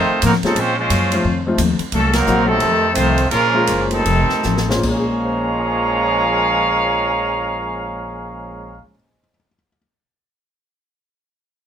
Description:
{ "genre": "jazz, big band swing", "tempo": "149-176 BPM", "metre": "4/4", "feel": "swing 62% on 8ths", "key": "Bb minor", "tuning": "A4 = 440 Hz", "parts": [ { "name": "clear trumpet section", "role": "melody", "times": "0.0-8.8 s", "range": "Gb3 to Bb5", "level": "-18 LUFS", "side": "right 1 dB", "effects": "none" }, { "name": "clear trombone section", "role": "second line", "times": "0.0-8.8 s", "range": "Bb2 to Db4", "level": "-22 LUFS", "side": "right 1 dB", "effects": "none" }, { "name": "picked steel-string acoustic guitar", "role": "accompaniment", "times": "0.0-8.9 s", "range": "F2 to C5", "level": "-24 LUFS", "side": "left 6 dB", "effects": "none" }, { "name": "upright bass", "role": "bass", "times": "0.0-8.8 s", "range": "F1 to Bb2", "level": "-23 LUFS", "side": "equal", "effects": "none" }, { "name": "swinging big-band drum kit", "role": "drums", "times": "0.2-5.0 s", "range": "crash cymbal, hi-hat, kick drum, ride cymbal, snare drum", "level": "-26 LUFS", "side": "right 1 dB", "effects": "none" }, { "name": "warm grand piano", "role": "accompaniment", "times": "0.4-9.8 s", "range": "Bb2 to C7", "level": "-23 LUFS", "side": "left 2 dB", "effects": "none" } ], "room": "moderate club reverb, RT60 0.5 s", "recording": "minimal, uncompressed stereo recording", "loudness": "-15 LUFS", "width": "side -9 dB against mid", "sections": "0.0-4.8 A section; 4.8-8.1 B section", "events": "slowing down 1.9-4.8; band accent 2.1; drum fill 4.4-4.8", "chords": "0.0 F7; 0.6 Bbm9; 1.2 F7; 1.9 Cm7b5; 2.6 F7; 3.3 Bbm9; 4.1 F7; 4.8 Bbm9" }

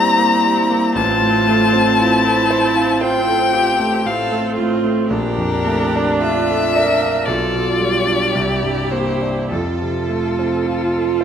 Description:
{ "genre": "classical, slow romantic movement for piano quartet", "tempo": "50-60 BPM", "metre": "4/4", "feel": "rubato", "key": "F major", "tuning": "A4 = 440 Hz", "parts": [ { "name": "rich violin", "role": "melody", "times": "0.0-11.2 s", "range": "A4 to Bb5", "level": "-18 LUFS", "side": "left 4 dB", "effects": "none" }, { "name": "rich cello", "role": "second line", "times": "0.0-11.2 s", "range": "E4 to Bb4", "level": "-22 LUFS", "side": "right 7 dB", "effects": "none" }, { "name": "clear concert grand piano", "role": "accompaniment", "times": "0.0-11.2 s", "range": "A1 to F5", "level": "-19 LUFS", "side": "equal", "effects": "none" }, { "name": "rich viola", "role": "accompaniment", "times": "0.0-11.2 s", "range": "C4 to F4", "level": "-23 LUFS", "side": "right 4 dB", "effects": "none" } ], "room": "wet recital hall reverb, RT60 1.5 s", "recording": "none", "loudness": "-14 LUFS", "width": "side -8 dB against mid", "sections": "0.0-11.2 A section", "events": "none", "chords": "0.0 C7/G; 0.9 F/A; 5.1 Bbmaj7; 7.3 G7/B; 8.3 C9; 9.5 F" }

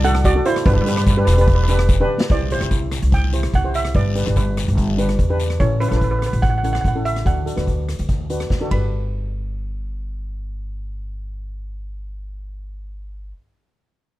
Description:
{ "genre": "calypso", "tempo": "145 BPM", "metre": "4/4", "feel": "straight", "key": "G major", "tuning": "A4 = 445 Hz", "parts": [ { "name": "steel pan", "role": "melody", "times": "0.0-13.3 s", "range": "D4 to B5", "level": "-23 LUFS", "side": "right 3 dB", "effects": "none" }, { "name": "steel pan", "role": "accompaniment", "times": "0.0-13.3 s", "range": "C#4 to C5", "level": "-25 LUFS", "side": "left 1 dB", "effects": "none" }, { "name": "upright bass", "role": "bass", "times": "0.0-13.3 s", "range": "E1 to G2", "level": "-21 LUFS", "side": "equal", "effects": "none" }, { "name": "street-band drum kit", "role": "drums", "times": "0.0-8.8 s", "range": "hi-hat, kick drum, ride cymbal, rim click, snare drum", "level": "-21 LUFS", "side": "equal", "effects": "none" }, { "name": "guiro", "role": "percussion", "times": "0.0-5.5 s", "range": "none", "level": "-33 LUFS", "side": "left 7 dB", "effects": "none" } ], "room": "little or no reverb", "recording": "dark, warm production", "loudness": "-16 LUFS", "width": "side -16 dB against mid", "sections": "0.0-2.3 A section; 2.3-8.9 B section; 8.9-12.2 C section", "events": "drum fill 2.1, 8.5-8.9", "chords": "0.0 D; 0.7 G; 2.3 C; 3.9 G; 5.6 A; 7.3 D; 8.7 G" }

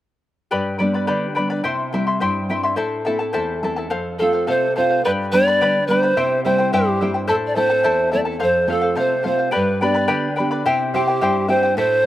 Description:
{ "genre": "andean folk", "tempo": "107 BPM", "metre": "2/4", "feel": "straight", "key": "unclear", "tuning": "A4 = 439 Hz", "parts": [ { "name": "charango", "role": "accompaniment", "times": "0.5-12.1 s", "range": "E4 to C6", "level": "-21 LUFS", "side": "left 3 dB", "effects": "slapback echo" }, { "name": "nylon-string guitar", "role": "accompaniment", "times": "0.5-12.1 s", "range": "E2 to G4", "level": "-22 LUFS", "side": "right 1 dB", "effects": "slapback echo" }, { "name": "polished pan flute", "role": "melody", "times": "4.2-12.1 s", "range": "G4 to D5", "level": "-18 LUFS", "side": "right 1 dB", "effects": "slapback echo" } ], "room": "light reverb", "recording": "recorded outdoors, with no room sound", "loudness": "-17 LUFS", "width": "side -13 dB against mid", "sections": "0.5-5.0 A section; 5.0-12.1 B section", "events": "none", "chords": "0.5 G; 1.6 C; 2.8 Am; 3.9 F; 5.0 G; 6.2 C; 7.3 Am; 8.4 F; 9.5 G; 10.7 C" }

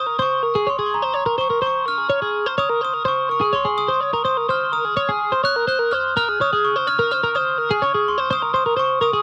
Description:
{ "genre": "rock", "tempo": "84 BPM (dotted quarters)", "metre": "6/8", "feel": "straight", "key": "unclear", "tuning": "A4 = 441 Hz", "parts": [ { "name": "glockenspiel with soft plastic mallets", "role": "melody", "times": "0.0-9.2 s", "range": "Bb5 to Gb6", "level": "-22 LUFS", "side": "equal", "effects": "slapback echo" }, { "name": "twelve-string electric guitar", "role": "arpeggios", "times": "0.0-9.2 s", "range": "Ab4 to Db5", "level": "-23 LUFS", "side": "equal", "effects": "analog chorus" } ], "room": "little or no reverb", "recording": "dry, close 1970s-style studio recording", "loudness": "-20 LUFS", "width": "mono", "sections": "0.0-9.2 A section", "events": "none", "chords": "0.0 Bbm9/Ab; 8.3 Ab (rootless)" }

